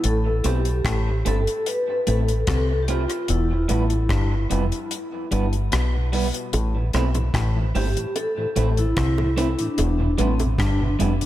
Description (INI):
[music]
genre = dub reggae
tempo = 74 BPM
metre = 4/4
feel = straight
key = A minor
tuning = A4 = 440 Hz
[part]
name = vibraphone with medium mallets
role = melody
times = 0.0-11.3 s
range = C4 to B4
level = -26 LUFS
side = equal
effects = dub echo
[part]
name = overdriven clav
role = riff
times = 0.0-11.1 s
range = E2 to C3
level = -30 LUFS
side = left 4 dB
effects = auto-wah, dub echo
[part]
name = deep dub fingered electric bass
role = bass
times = 0.0-11.2 s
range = E1 to C2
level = -22 LUFS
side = equal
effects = none
[part]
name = deep reggae drum kit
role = drums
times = 0.0-11.3 s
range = hi-hat, kick drum, rim click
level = -28 LUFS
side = left 1 dB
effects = none
[part]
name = electric guitar at the edge of break-up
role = accompaniment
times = 0.4-11.1 s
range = G3 to E4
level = -30 LUFS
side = right 5 dB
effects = tremolo, dub echo
[part]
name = bongos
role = percussion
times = 6.5-10.6 s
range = none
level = -33 LUFS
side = right 2 dB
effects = none
[part]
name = mellow tonewheel organ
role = accompaniment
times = 6.7-11.3 s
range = E2 to E4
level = -31 LUFS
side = equal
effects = stopped rotary speaker, dub echo
[sound]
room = light reverb, small room reverb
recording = echo-heavy mix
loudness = -20 LUFS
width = side -14 dB against mid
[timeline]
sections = 0.0-11.3 A section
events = break 0.0-6.5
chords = 0.0 Am; 3.3 Em; 6.5 Am; 9.8 Em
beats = | 0.04 0.85 1.66 2.48 | 3.29 4.10 4.91 5.72 | 6.53 7.34 8.15 8.97 | 9.78 10.59